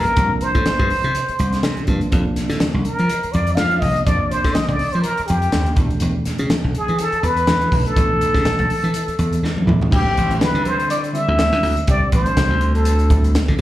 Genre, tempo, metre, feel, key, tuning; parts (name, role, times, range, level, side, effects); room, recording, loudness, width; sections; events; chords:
electric jazz fusion; 123 BPM; 4/4; swing 56% on 16ths; A4 = 441 Hz
trumpet with plunger mute; melody; 0.0-13.2 s; G4 to F5; -20 LUFS; equal; slapback echo
bell-like tine electric piano; accompaniment; 0.0-13.6 s; B2 to G4; -25 LUFS; equal; medium stereo tremolo
slap bass; bass; 0.0-13.6 s; A1 to F3; -20 LUFS; equal
crisp fusion drum kit; drums; 0.1-13.6 s; crash cymbal, hi-hat, kick drum, snare drum, toms; -21 LUFS; equal
congas; percussion; 0.2-13.2 s; -27 LUFS; equal
light reverb; live gig heard through the venue's PA, club reverb; -16 LUFS; side -14 dB against mid
0.0-9.9 A section; 9.9-13.6 B section
drum fill 9.3-9.9
0.0 C9sus4; 2.1 Fsus4; 5.8 E7sus4; 9.9 D9sus4